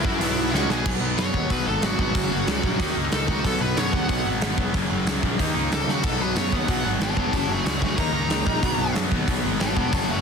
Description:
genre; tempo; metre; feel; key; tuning
punk rock; 185 BPM; 4/4; straight; unclear; A4 = 441 Hz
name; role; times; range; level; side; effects
high-gain lead guitar; melody; 0.0-10.2 s; E4 to C#6; -27 LUFS; equal; distortion
cranked stack guitar; riff; 0.0-10.2 s; F#2 to F#4; -29 LUFS; left 13 dB; overdrive
sludgy distorted guitar; riff; 0.0-10.2 s; F#2 to F#4; -30 LUFS; right 15 dB; overdrive
thick fuzz guitar; riff; 0.0-10.2 s; F#2 to F#4; -30 LUFS; equal; distortion
fuzz picked electric bass; bass; 0.0-10.2 s; E1 to C#3; -28 LUFS; equal; overdrive
big rock drum kit; drums; 0.0-10.0 s; crash cymbal, hi-hat, kick drum, snare drum; -26 LUFS; equal; soft clipping on snare
room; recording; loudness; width
little or no reverb; dense, heavily limited modern master; -20 LUFS; side -6 dB against mid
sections
0.8-10.2 A section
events
drum fill 0.5-0.8, 5.9; lead electric guitar solo 0.8-10.2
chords
0.2 B5; 0.5 F#5; 0.8 B5; 2.1 F#; 2.8 D#5; 3.4 B5; 4.7 F#; 5.4 D#5; 6.0 B5; 7.3 F#5; 8.0 D#5; 8.6 B5

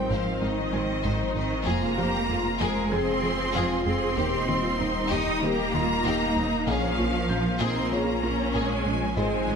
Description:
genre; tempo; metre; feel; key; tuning
cinematic, hybrid orchestral and electronic film score; 96 BPM; 4/4; straight; unclear; A4 = 443 Hz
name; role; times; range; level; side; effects
rich symphonic violin section; second line; 0.0-9.6 s; Eb5 to Eb6; -31 LUFS; left 2 dB; none
warm studio viola section; accompaniment; 0.0-9.6 s; C4 to Bb4; -31 LUFS; left 1 dB; none
mellow French horn section; sustained chords; 0.0-9.4 s; G4 to Db5; -34 LUFS; left 5 dB; none
warm analog pad; sustained chords; 0.0-9.6 s; F3 to Eb5; -33 LUFS; left 1 dB; chorus
rich symphonic cello section; bass; 0.0-9.6 s; Eb3 to Eb4; -30 LUFS; right 3 dB; none
wide detuned saw bass; bass; 0.0-9.6 s; Eb1 to Bb1; -34 LUFS; equal; chorus
felt-muted upright piano; texture; 0.0-9.6 s; Eb4 to Ab6; -40 LUFS; left 1 dB; ping-pong delay
warm symphonic violin section; melody; 0.1-9.6 s; C4 to C5; -35 LUFS; left 4 dB; none
tight sequenced synth; arpeggios; 0.1-9.6 s; Eb3 to F4; -36 LUFS; equal; chorus
tight sequencer bass; riff; 0.1-9.6 s; Eb2 to Bb3; -34 LUFS; right 2 dB; none
rich symphonic double bass section; bass; 0.1-9.6 s; Ab1 to F2; -35 LUFS; right 2 dB; none
room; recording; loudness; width
moderate scoring stage reverb, RT60 1.7 s; none; -23 LUFS; side -6 dB against mid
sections
0.0-9.6 A section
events
none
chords
0.0 Ab; 1.7 Fm; 4.2 Eb6; 6.7 Bbm7

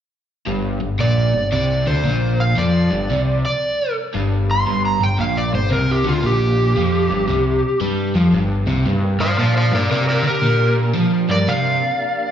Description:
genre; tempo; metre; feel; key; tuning
rock; 114 BPM; 4/4; swing 65% on 8ths; G minor; A4 = 440 Hz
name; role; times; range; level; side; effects
crunchy overdriven guitar; riff; 0.5-11.8 s; G2 to G3; -18 LUFS; equal; none
growling picked electric bass; bass; 0.5-8.8 s; G1 to G2; -22 LUFS; equal; overdrive
overdriven slide guitar; melody; 1.0-12.3 s; F4 to C6; -20 LUFS; equal; none
mellow tonewheel organ; sustained chords; 8.8-12.3 s; Bb3 to B4; -31 LUFS; right 2 dB; overdrive, fast rotary speaker
lead guitar through a small cranked amp; second line; 9.2-12.3 s; G4 to D5; -27 LUFS; right 1 dB; overdrive, slapback echo
room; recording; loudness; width
moderate lush hall reverb, RT60 2.4 s; live gig heard through the venue's PA, club reverb, nothing above 7.7 kHz; -16 LUFS; side -9 dB against mid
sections
0.5-8.9 A section; 8.9-12.3 B section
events
none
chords
0.5 Gm

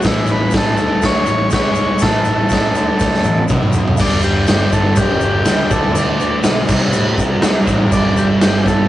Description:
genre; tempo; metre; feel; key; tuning
garage rock duo or trio; 122 BPM; 4/4; straight; unclear; A4 = 440 Hz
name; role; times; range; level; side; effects
combo organ; melody; 0.0-8.9 s; E4 to D5; -19 LUFS; left 1 dB; none
fuzz guitar; riff; 0.0-8.9 s; G2 to D4; -19 LUFS; right 1 dB; distortion
growling picked electric bass; bass; 0.0-8.9 s; G1 to A2; -22 LUFS; equal; overdrive, tube saturation
raw garage drum kit; drums; 0.0-8.8 s; crash cymbal, kick drum, snare drum, toms; -15 LUFS; equal; none
tube shaker; percussion; 0.0-8.8 s; none; -33 LUFS; left 4 dB; none
room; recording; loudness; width
light reverb; rough rehearsal-room recording, tube saturation, nothing above 10.9 kHz; -12 LUFS; side -14 dB against mid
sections
0.0-4.0 A section; 4.0-8.9 B section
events
drum fill 3.0-4.0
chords
0.0 A5; 0.8 D5; 1.3 A; 1.5 C#5; 2.0 A5; 2.7 D5; 3.2 A5; 3.5 B5; 4.0 G5; 5.7 D5; 6.7 C5; 7.9 G5

